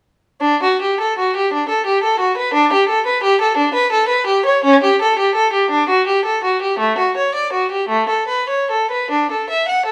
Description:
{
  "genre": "classical, baroque-style suite movement for unaccompanied violin",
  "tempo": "47-60 BPM (dotted quarters)",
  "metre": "6/8",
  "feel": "rubato",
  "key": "D major",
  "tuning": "A4 = 441 Hz",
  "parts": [
    { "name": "warm violin", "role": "solo", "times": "0.4-9.9 s", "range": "A3 to F#5", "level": "-16 LUFS", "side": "equal", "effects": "none" }
  ],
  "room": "wet stone room reverb, RT60 0.9 s",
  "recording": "none",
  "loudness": "-16 LUFS",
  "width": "mono",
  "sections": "0.4-9.9 A section",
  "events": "none",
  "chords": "none",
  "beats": "| 0.42 1.52 | 2.53 3.55 | 4.63 5.70 | 6.79 7.89 | 9.10"
}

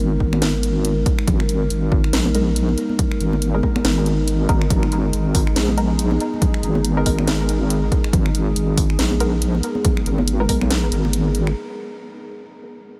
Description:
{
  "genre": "deep dubstep",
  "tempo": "140 BPM",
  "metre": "4/4",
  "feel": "swing 58% on 16ths, half-time",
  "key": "G# minor",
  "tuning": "A4 = 440 Hz",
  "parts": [
    { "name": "dark analog pad", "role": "sustained chords", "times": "0.0-13.0 s", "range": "G#3 to A#4", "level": "-28 LUFS", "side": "equal", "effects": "chorus, phaser" },
    { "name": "deep soft wobble bass", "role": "bass", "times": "0.0-11.5 s", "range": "G#1 to B1", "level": "-22 LUFS", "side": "equal", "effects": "chorus" },
    { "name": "electronic kick drum", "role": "drums", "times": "0.2-10.6 s", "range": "none", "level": "-22 LUFS", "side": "equal", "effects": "overdrive, small room ambience" },
    { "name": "garage drum kit", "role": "drums", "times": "0.3-11.5 s", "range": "finger snaps, hi-hat, snare drum", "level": "-28 LUFS", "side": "equal", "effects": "small room ambience" },
    { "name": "congas", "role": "percussion", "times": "0.3-11.1 s", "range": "none", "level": "-30 LUFS", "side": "equal", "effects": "dub echo" },
    { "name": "filtered dub chord stab", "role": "stabs", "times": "2.3-12.7 s", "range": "G#3 to A#4", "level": "-31 LUFS", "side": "equal", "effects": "analog chorus, dub echo" }
  ],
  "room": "light reverb, digital ambience",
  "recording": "none",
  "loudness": "-19 LUFS",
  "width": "mono",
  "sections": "0.0-11.6 A section; 11.6-13.0 B section",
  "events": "kick drops out 11.1-11.6",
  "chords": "0.0 G#sus2",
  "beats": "0.42 0.85 | 1.27 1.70 2.13 2.56 | 2.99 3.42 3.85 4.28 | 4.70 5.13 5.56 5.99 | 6.42 6.85 7.28 7.70 | 8.13 8.56 8.99 9.42 | 9.85 10.28 10.70 11.13 | 11.56 11.99 12.42 12.85"
}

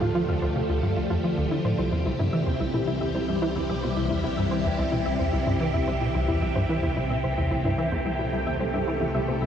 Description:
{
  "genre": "ambient, sequencer-driven space music",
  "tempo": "110 BPM",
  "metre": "4/4",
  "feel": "straight",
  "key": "unclear",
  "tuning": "A4 = 441 Hz",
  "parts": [
    { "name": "phased string machine", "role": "sustained chords", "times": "0.0-9.5 s", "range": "C3 to G4", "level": "-27 LUFS", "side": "equal", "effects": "ensemble chorus, phaser" },
    { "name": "soft round pluck", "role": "arpeggios", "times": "0.0-9.5 s", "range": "E4 to F5", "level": "-32 LUFS", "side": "moving between left 4 dB and right 2 dB", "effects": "chorus, auto-pan, tape echo" },
    { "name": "plucky analog bass", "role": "riff", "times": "0.0-9.5 s", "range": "C2 to F3", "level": "-27 LUFS", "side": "equal", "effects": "ensemble chorus, cassette tape, tape echo" },
    { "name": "warm sub bass", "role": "bass", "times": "0.0-9.5 s", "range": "C2 to D2", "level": "-35 LUFS", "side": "equal", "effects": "none" }
  ],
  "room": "wet huge ambient reverb, RT60 7.4 s",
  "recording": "dreamy mix soaked in reverb",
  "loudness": "-23 LUFS",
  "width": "side -8 dB against mid",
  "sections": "0.0-9.5 A section",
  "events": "none",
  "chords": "0.0 Dm; 1.8 C",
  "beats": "0.15 0.69 1.24 | 1.78 2.33 2.87 3.42 | 3.96 4.51 5.06 5.60 | 6.15 6.69 7.24 7.78 | 8.33 8.87 9.42"
}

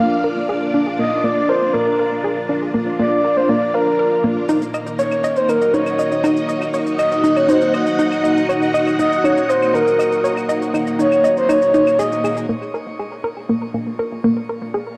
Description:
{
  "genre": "ambient, sequencer-driven space music",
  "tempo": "120 BPM",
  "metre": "4/4",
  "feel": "straight",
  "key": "Eb dorian",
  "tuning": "A4 = 440 Hz",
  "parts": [
    { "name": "breathy flute-like synth lead", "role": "melody", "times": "0.0-12.4 s", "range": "Bb4 to F5", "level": "-21 LUFS", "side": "equal", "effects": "chorus, cassette tape, shimmer reverb, tape echo" },
    { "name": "string machine, full ensemble", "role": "sustained chords", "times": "0.0-15.0 s", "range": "Bb3 to Gb5", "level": "-24 LUFS", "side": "equal", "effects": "phaser, ensemble chorus, cassette tape, shimmer reverb" },
    { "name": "hollow square pluck", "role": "riff", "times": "0.0-14.8 s", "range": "Bb3 to F5", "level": "-23 LUFS", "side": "equal", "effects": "chorus, cassette tape, shimmer reverb, tape echo" },
    { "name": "shaker and claves", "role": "percussion", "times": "4.5-12.5 s", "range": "none", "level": "-38 LUFS", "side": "equal", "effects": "cassette tape, tape echo" }
  ],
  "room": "wet small room reverb, RT60 0.6 s",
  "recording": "home recording on cassette",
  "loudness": "-18 LUFS",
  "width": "mono",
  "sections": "0.0-12.5 A section; 12.5-15.0 A section",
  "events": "none",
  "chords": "0.0 Bb; 4.5 Ebm; 12.5 Bb",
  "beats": "| 0.49 0.99 1.49 1.99 | 2.49 2.99 3.49 3.99 | 4.49 4.99 5.49 5.99 | 6.49 6.99 7.49 7.99 | 8.49 8.99 9.49 9.99 | 10.49 10.99 11.49 11.99 | 12.49 12.99 13.49 13.99 | 14.49"
}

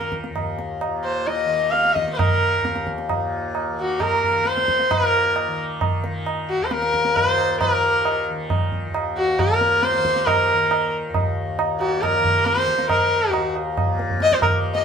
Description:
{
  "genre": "indian classical, Hindustani",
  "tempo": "134 BPM",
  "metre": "3/4",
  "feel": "straight",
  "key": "unclear",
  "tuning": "A4 = 440 Hz",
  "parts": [
    { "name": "clear sarangi", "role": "melody", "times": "0.0-14.8 s", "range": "Gb4 to F5", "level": "-19 LUFS", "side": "left 1 dB", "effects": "none" },
    { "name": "tanpura", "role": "drone", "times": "0.0-14.8 s", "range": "Eb2 to Eb3", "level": "-28 LUFS", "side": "left 3 dB", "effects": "none" },
    { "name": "tabla", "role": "percussion", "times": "0.0-14.8 s", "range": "none", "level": "-24 LUFS", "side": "right 2 dB", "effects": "none" }
  ],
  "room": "wet studio reverb, RT60 0.7 s",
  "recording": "band playing live in one room",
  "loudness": "-18 LUFS",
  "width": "side -7 dB against mid",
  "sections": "0.0-4.9 A section; 4.9-14.8 B section",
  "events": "speeding up 0.0-14.8",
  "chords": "none",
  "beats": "0.36 | 0.81 1.27 1.73 | 2.19 2.64 3.10 | 3.55 4.00 4.46 | 4.91 5.36 5.81 | 6.26 6.71 7.15 | 7.60 8.05 8.49 | 8.94 9.38 9.82 | 10.27 10.71 11.15 | 11.59 12.03 12.46 | 12.90 13.34 13.77 | 14.21 14.64"
}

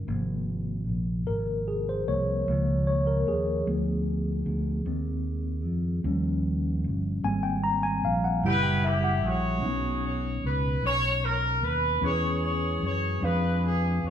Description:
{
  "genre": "slow gospel",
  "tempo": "50 BPM (dotted quarters)",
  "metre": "6/8",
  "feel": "straight",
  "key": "Ab major, B major from 9.6 s",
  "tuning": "A4 = 439 Hz",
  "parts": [
    { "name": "mellow tine electric piano", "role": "accompaniment", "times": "0.0-14.1 s", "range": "Bb2 to Bb5", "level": "-29 LUFS", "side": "left 1 dB", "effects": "medium stereo tremolo" },
    { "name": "fingered electric bass", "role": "bass", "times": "0.0-14.1 s", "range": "Gb1 to F#2", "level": "-28 LUFS", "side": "equal", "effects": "none" },
    { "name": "warm horn section", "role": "melody", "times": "8.5-14.1 s", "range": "D4 to C#5", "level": "-28 LUFS", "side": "equal", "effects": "none" }
  ],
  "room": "wet large studio reverb, RT60 1.0 s",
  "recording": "band playing live in one room",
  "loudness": "-25 LUFS",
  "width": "side -9 dB against mid",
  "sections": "0.1-9.6 A section; 9.6-14.1 B section",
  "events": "tine electric piano solo 0.1-9.6",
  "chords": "0.1 Ab69; 2.5 Db6; 3.7 Ddim7; 4.9 Ab/Eb; 6.0 Eb9; 7.2 Abmaj9; 8.4 Gb7b9; 9.6 B69; 12.0 E6; 13.2 Fdim7",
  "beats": "| 0.07 1.26 | 2.46 3.66 | 4.85 6.05 | 7.24 8.44 | 9.63 10.83 | 12.03 13.23"
}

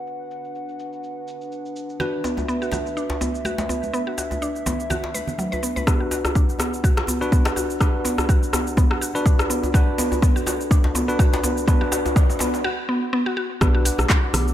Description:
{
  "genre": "afro house",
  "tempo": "124 BPM",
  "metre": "4/4",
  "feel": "swing 56% on 16ths",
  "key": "B minor",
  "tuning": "A4 = 440 Hz",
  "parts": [
    { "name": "dark analog pad", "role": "sustained chords", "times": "0.0-14.5 s", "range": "D4 to D6", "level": "-33 LUFS", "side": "right 1 dB", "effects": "lush chorus, sidechain pumping" },
    { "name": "bell-like tine electric piano", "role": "stabs", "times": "0.0-14.5 s", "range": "D4 to B4", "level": "-28 LUFS", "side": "left 1 dB", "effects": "sidechain pumping, low-pass filter, dub echo" },
    { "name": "deep house drum kit", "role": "drums", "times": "0.1-14.5 s", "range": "cabasa, handclaps, hi-hat, rim click, toms", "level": "-27 LUFS", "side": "equal", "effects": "overdrive, high-pass filter on perc, low-pass filter on perc, high-pass filter on snare, low-pass filter on snare, high-pass filter on toms, low-pass filter on toms, high-pass filter on hats, low-pass filter on hats, high-pass filter on room, low-pass filter on room" },
    { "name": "mallet-like synth pluck", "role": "arpeggios", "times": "2.0-14.5 s", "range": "F#3 to B4", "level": "-26 LUFS", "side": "equal", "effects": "chorus, sidechain pumping, dub echo" },
    { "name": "congas", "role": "percussion", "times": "2.0-5.9, 13.6-14.4 s", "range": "none", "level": "-32 LUFS", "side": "right 2 dB", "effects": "none" },
    { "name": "djembe", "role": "percussion", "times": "2.2-12.5 s", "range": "none", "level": "-30 LUFS", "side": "left 1 dB", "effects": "none" },
    { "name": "electronic kick drum", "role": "drums", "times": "5.9-14.2 s", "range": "none", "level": "-18 LUFS", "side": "equal", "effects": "overdrive" },
    { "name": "woody FM bass", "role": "bass", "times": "13.6-14.5 s", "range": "B1", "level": "-22 LUFS", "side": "equal", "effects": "tube saturation, sidechain pumping" }
  ],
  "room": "light reverb",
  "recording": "none",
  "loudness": "-19 LUFS",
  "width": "side -12 dB against mid",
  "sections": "0.0-5.9 A section; 5.9-13.6 B section",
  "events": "build-up 5.9-13.6; drum fill 5.9-12.6; filter sweep on synth pluck 5.9-13.6; filter sweep on tine electric piano 5.9-13.6; break 12.6-13.6",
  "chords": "0.0 Bm",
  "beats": "| 0.06 0.55 1.03 1.52 | 2.00 2.48 2.97 3.45 | 3.94 4.42 4.90 5.39 | 5.87 6.35 6.84 7.32 | 7.81 8.29 8.77 9.26 | 9.74 10.22 10.71 11.19 | 11.68 12.16 12.64 13.13 | 13.61 14.10"
}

